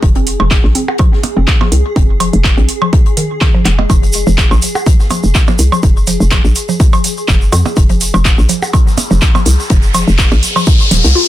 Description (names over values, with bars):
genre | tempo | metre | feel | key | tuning
minimal techno | 124 BPM | 4/4 | swing 54% on 16ths | F minor | A4 = 440 Hz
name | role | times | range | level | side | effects
hollow knocking FM bass | bass | 0.0-11.1 s | Eb1 to F2 | -12 LUFS | equal | sidechain pumping
electronic kick drum | drums | 0.0-10.8 s | none | -10 LUFS | equal | small room ambience
open jazz drum kit | drums | 0.0-11.2 s | hi-hat, snare drum | -27 LUFS | left 4 dB | sidechain pumping on hats, high-pass filter on hats, small room ambience, high-pass filter on snare, high-pass filter on room
swarming drone | texture | 0.0-11.2 s | Ab4 | -24 LUFS | equal | built-in reverb, sidechain pumping
mallet-like synth pluck | riff | 0.2-11.2 s | Eb3 to F4 | -19 LUFS | left 1 dB | chorus, sidechain pumping, ping-pong delay
house drum kit | drums | 0.3-11.0 s | handclaps, hi-hat | -17 LUFS | right 1 dB | small room ambience
percussion blips | percussion | 0.4-10.6 s | none | -19 LUFS | right 3 dB | small room ambience, ping-pong delay
egg shaker | percussion | 3.9-11.1 s | none | -22 LUFS | right 2 dB | none
riser | sound effects | 8.9-11.3 s | none | -17 LUFS | left 1 dB | none
room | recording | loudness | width
light reverb | dense, heavily limited modern master | -9 LUFS | side -14 dB against mid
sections
0.0-11.3 A section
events
riser 8.9-11.3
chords
0.0 Fm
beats
| 0.03 0.51 0.99 1.48 | 1.96 2.44 2.93 3.41 | 3.90 4.38 4.86 5.35 | 5.83 6.32 6.80 7.28 | 7.77 8.25 8.73 9.22 | 9.70 10.19 10.67 11.15